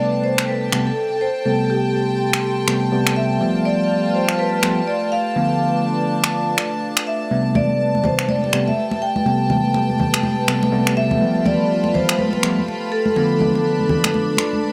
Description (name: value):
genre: deep house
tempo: 123 BPM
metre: 4/4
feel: swing 60% on 16ths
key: A minor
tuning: A4 = 440 Hz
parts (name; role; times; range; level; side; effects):
- vibraphone with medium hard mallets; melody; 0.0-14.6 s; G4 to G5; -24 LUFS; equal; analog delay
- warbly tape-like pad; sustained chords; 0.0-14.7 s; A3 to C6; -31 LUFS; equal; chorus, built-in reverb
- bell-like tine electric piano; stabs; 0.0-14.4 s; C3 to B3; -23 LUFS; equal; low-pass filter, analog delay
- rich studio string section; texture; 0.0-14.7 s; D4 to B5; -29 LUFS; equal; none
- electronic finger snaps; drums; 0.4-14.5 s; none; -23 LUFS; equal; none
- congas; percussion; 7.5-14.6 s; none; -26 LUFS; equal; none
room: light reverb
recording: none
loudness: -19 LUFS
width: mono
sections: 0.0-14.7 A section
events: filter sweep on tine electric piano 0.0-14.7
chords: 0.0 Am9; 3.4 G9; 5.4 Bm7b5; 7.3 Am9; 11.2 G9; 13.2 Bm7b5